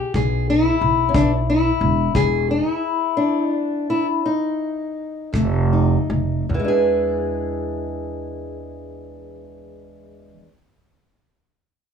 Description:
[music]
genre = acoustic country blues, solo or duo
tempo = 51-60 BPM (dotted quarters)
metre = 12/8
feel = straight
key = E mixolydian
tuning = A4 = 439 Hz
[part]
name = fingerpicked old ladder-braced acoustic guitar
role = melody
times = 0.0-10.5 s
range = E2 to G#4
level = -20 LUFS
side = left 2 dB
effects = none
[part]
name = kick drum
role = drums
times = 0.1-5.5 s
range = none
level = -26 LUFS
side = right 1 dB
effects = none
[part]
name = upright bass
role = bass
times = 0.2-10.3 s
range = E1 to E2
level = -21 LUFS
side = right 1 dB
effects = none
[sound]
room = light reverb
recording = rough home demo mix, studio ambience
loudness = -18 LUFS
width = side -7 dB against mid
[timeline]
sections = 0.0-6.5 A section; 6.5-11.2 B section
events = slowing down 0.8-6.5; stop 2.1-5.3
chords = 0.0 E5; 2.1 Emaj7(no3); 5.3 F7; 6.5 E7

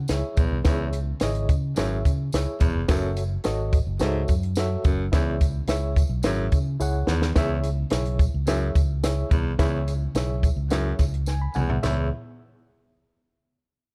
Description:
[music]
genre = uptempo 1960s-style soul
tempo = 107 BPM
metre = 4/4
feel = straight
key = C# minor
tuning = A4 = 441 Hz
[part]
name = fingered electric bass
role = bass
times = 0.0-12.1 s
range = E1 to C#3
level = -28 LUFS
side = equal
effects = none
[part]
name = bright reed electric piano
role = accompaniment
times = 0.1-12.1 s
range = C#2 to B5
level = -33 LUFS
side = equal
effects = fast tremolo
[part]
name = compact cocktail drum kit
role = drums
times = 0.1-12.0 s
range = hi-hat, kick drum, snare drum, splash cymbal, toms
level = -25 LUFS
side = equal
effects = none
[part]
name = tambourine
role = percussion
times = 0.1-12.1 s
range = none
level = -46 LUFS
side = equal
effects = none
[part]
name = breathy baritone saxophone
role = riff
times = 0.4-12.1 s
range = E2 to G#2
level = -33 LUFS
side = equal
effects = none
[sound]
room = small room ambience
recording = dark, warm production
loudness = -24 LUFS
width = mono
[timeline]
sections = 0.0-7.4 A section; 7.4-11.8 B section; 11.8-13.9 C section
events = drum fill 6.8-7.4, 11.3-11.8; reed electric piano fill 11.0-11.8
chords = 0.0 C#m; 2.9 F#m7; 5.1 C#m

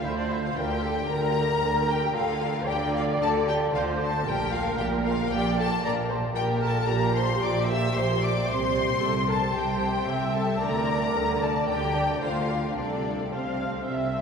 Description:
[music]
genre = quick classical-period movement for string orchestra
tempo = 113 BPM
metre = 4/4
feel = straight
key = D minor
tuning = A4 = 442 Hz
[part]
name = warm symphonic violin section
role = melody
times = 0.0-14.2 s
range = C5 to E6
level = -29 LUFS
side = left 4 dB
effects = none
[part]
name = rich chamber violin section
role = second line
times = 0.0-14.2 s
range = C4 to E5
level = -30 LUFS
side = left 1 dB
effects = none
[part]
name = rich symphonic viola section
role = accompaniment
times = 0.0-14.2 s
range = G4 to F5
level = -31 LUFS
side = equal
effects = none
[part]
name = clear symphonic double bass section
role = bass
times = 0.0-14.2 s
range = Bb1 to D2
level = -30 LUFS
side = right 2 dB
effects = none
[part]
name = rich symphonic cello section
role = bass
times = 0.0-14.2 s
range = Bb2 to D3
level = -31 LUFS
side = right 3 dB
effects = none
[sound]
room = wet cathedral reverb, RT60 4.9 s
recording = heard from further back in the room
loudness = -23 LUFS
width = side -6 dB against mid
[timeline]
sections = 0.0-14.2 A section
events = none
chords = 0.0 Dm; 4.3 Bb; 8.5 C; 10.6 Bb/D; 12.8 F/C

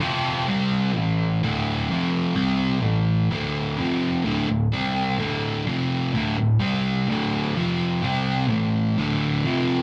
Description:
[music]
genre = rock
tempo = 127 BPM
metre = 4/4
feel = straight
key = unclear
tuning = A4 = 439 Hz
[part]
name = sludgy distorted guitar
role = solo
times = 0.0-9.8 s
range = D2 to C4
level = -23 LUFS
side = equal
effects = overdrive
[sound]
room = wet small room ambience, RT60 0.5 s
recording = rough rehearsal-room recording, tube saturation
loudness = -23 LUFS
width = mono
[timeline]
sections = 0.0-9.8 A section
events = none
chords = 0.0 F5; 0.5 C5; 1.0 A5; 1.4 D5; 1.9 F5; 2.4 C5; 2.8 A5; 3.3 D5; 3.8 F5; 4.3 D5; 4.7 C5; 5.2 D5; 5.7 F5; 6.1 D5; 6.6 C5; 7.1 D5; 7.6 F5; 8.0 C5; 8.5 A5; 9.0 D5

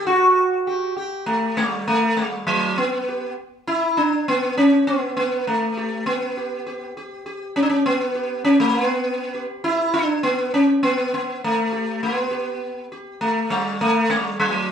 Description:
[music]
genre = indian classical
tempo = 100 BPM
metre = 5/4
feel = straight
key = G raga yaman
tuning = A4 = 440 Hz
[part]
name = sitar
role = solo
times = 0.0-14.7 s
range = F#3 to G4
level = -19 LUFS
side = equal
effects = none
[sound]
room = wet large studio reverb, RT60 0.9 s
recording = band playing live in one room, small room ambience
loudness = -18 LUFS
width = side -8 dB against mid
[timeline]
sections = 0.0-14.7 A section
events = none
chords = none

